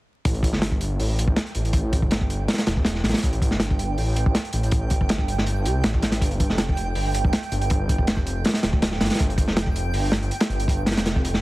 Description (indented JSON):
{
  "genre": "drum and bass, jungle",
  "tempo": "161 BPM",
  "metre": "4/4",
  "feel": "straight",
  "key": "unclear",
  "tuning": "A4 = 439 Hz",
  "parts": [
    { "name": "twinkling granular texture", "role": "texture", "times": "1.0-11.4 s", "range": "G5", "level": "-33 LUFS", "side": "right 6 dB", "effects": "built-in reverb" },
    { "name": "detuned saw bass", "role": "bass", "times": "0.3-11.4 s", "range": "D1 to C2", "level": "-24 LUFS", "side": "equal", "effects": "none" },
    { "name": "crunchy breakbeat drum kit", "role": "drums", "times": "0.3-11.4 s", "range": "hi-hat, kick drum, snare drum", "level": "-22 LUFS", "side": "equal", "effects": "none" }
  ],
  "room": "little or no reverb",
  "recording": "heavily compressed radio sound, multiband compression, vinyl crackle",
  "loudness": "-20 LUFS",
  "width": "side -18 dB against mid",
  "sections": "0.2-11.4 A section",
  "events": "none",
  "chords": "0.2 A7(no3); 6.2 G7(no3)"
}